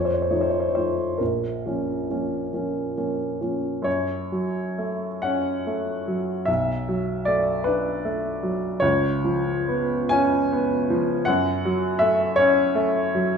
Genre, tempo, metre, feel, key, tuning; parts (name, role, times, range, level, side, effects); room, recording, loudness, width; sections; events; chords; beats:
classical, romantic nocturne for solo piano; 42-54 BPM (dotted quarters); 12/8; rubato; Bb minor, F# minor from 3.9 s; A4 = 440 Hz
clear upright piano; solo; 0.0-13.4 s; Bb1 to G#5; -21 LUFS; equal
wet recital hall reverb, RT60 1.3 s; recorded in a church or concert hall, nothing above 10.3 kHz; -21 LUFS; side -6 dB against mid
0.0-3.9 A section; 3.9-13.4 B section
0.0 F7; 1.2 Bbm; 3.9 F#m; 6.5 Bm7; 8.8 C#7; 11.3 F#m
1.20 2.52 | 3.85 5.24 6.48 7.66 | 8.82 10.12 11.28 12.39